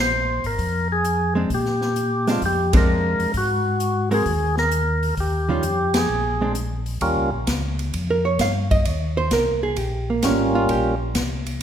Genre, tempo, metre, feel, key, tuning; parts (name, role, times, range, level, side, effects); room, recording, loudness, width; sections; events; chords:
soul jazz organ trio; 130 BPM; 4/4; swing 68% on 8ths; Eb mixolydian; A4 = 441 Hz
percussive tonewheel organ; melody; 0.0-7.3, 10.2-11.0 s; G3 to C5; -22 LUFS; equal; slow rotary speaker
mellow tonewheel organ; bass; 0.0-11.6 s; Ab1 to Bb2; -24 LUFS; left 1 dB; slow rotary speaker
swinging big-band drum kit; drums; 0.4-11.6 s; hi-hat, kick drum, ride cymbal, snare drum; -25 LUFS; left 1 dB
archtop guitar, miked and amplified; accompaniment; 1.4-10.9 s; Eb3 to F5; -23 LUFS; right 3 dB
moderate recital hall reverb, RT60 1.4 s; minimal, uncompressed stereo recording; -19 LUFS; side -9 dB against mid
0.0-7.0 A section; 7.0-11.6 B section
band accent 2.7, 5.9; hollow-body jazz guitar solo 7.0-11.6
0.0 Bb9; 3.3 Ab7sus2; 5.2 Eb9; 6.1 Bb9; 7.0 Eb9